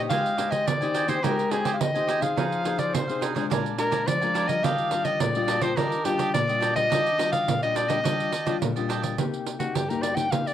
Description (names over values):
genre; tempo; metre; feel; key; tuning
samba and choro; 106 BPM; 4/4; straight; Eb major; A4 = 440 Hz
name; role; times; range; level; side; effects
cavaquinho; accompaniment; 0.0-9.2 s; D4 to Ab5; -31 LUFS; right 6 dB; none
nylon-string guitar; accompaniment; 0.0-10.5 s; G2 to Ab4; -29 LUFS; left 6 dB; none
bright soprano saxophone; melody; 0.1-10.5 s; F#4 to G5; -25 LUFS; left 1 dB; cassette tape
pandeiro; percussion; 0.1-10.5 s; none; -29 LUFS; right 6 dB; none
room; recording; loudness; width
wet studio reverb, RT60 0.6 s; home recording on cassette; -22 LUFS; side -10 dB against mid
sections
0.0-9.2 A section; 9.2-10.5 B section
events
soprano saxophone solo 9.2-10.5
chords
0.1 Abmaj7; 2.4 Fm7; 3.5 Bb7; 4.6 Ebmaj9; 9.2 Cm7